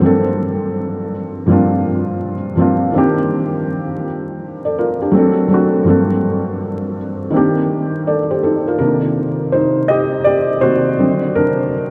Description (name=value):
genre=hip hop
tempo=82 BPM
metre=4/4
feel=swing 64% on 16ths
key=C dorian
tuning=A4 = 443 Hz
part: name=felt-muted upright piano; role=solo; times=0.0-11.9 s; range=G2 to Eb5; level=-16 LUFS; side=equal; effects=cassette tape, low-pass filter, tape echo
room=wet cathedral reverb, RT60 6.5 s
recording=dreamy mix soaked in reverb, vinyl crackle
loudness=-16 LUFS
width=mono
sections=0.0-8.8 A section; 8.8-11.9 A section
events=felt piano solo 8.8-11.9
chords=0.0 Gm11; 2.9 Cm9; 5.1 D7; 5.9 Gm11; 7.3 Cm9; 11.0 D7